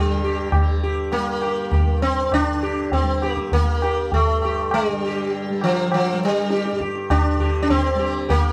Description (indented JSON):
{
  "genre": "indian classical, Hindustani",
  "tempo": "100 BPM",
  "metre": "4/4",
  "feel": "straight",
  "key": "G raga bhimpalasi",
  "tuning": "A4 = 440 Hz",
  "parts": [
    { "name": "sitar", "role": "melody", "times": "0.0-8.5 s", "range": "F3 to G4", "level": "-23 LUFS", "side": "equal", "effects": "none" },
    { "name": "tanpura", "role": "drone", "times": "0.0-8.5 s", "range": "G2 to G3", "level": "-32 LUFS", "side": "equal", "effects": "none" },
    { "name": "tabla", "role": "percussion", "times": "0.5-8.5 s", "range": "none", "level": "-24 LUFS", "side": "equal", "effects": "none" }
  ],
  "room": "light reverb",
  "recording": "dark, warm production",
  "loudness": "-21 LUFS",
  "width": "mono",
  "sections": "0.0-8.5 A section",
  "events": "none",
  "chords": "none"
}